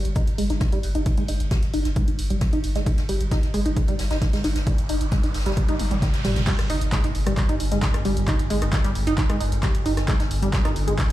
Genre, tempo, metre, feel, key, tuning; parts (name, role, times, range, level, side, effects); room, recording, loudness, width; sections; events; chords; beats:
driving peak-time techno; 133 BPM; 4/4; straight; A4 = 440 Hz
saturated sub bass; bass; 0.0-11.1 s; G1; -26 LUFS; equal; overdrive, sidechain pumping, low-pass filter
jazz brush drum kit; drums; 0.1-11.1 s; ride cymbal, snare drum; -39 LUFS; right 1 dB; sidechain pumping on cymbals, high-pass filter on cymbals, high-pass filter on snare, high-pass filter on room
punchy analog drum machine; drums; 0.1-11.1 s; crash cymbal, handclaps, hi-hat, rim click, toms; -31 LUFS; equal
tight sequenced synth; riff; 0.2-11.0 s; G3 to Eb4; -27 LUFS; right 1 dB; chorus, tube saturation, sidechain pumping, ping-pong delay
electronic kick drum; drums; 0.2-11.1 s; -22 LUFS; equal
riser and impact; sound effects; 3.9-8.3 s; -35 LUFS; equal
metallic inharmonic drone; drone; 6.9-11.1 s; G2 to D3; -30 LUFS; equal; chorus, built-in reverb, phaser, sidechain pumping
light reverb, digital ambience; played on a big sound system in a bare room, large studio reverb; -20 LUFS; side -14 dB against mid
0.0-6.5 A section; 6.5-11.1 B section
filter sweep on synth arpeggio sound 0.0-6.5; riser 3.9-6.5; drum fill 5.6-6.5; drop 6.5-11.1; impact 6.5-8.3
0.0 N.C.; 6.5 G5
0.16 0.61 | 1.06 1.51 1.96 2.41 | 2.86 3.31 3.77 4.22 | 4.67 5.12 5.57 6.02 | 6.47 6.92 7.38 7.83 | 8.28 8.73 9.18 9.63 | 10.08 10.53 10.98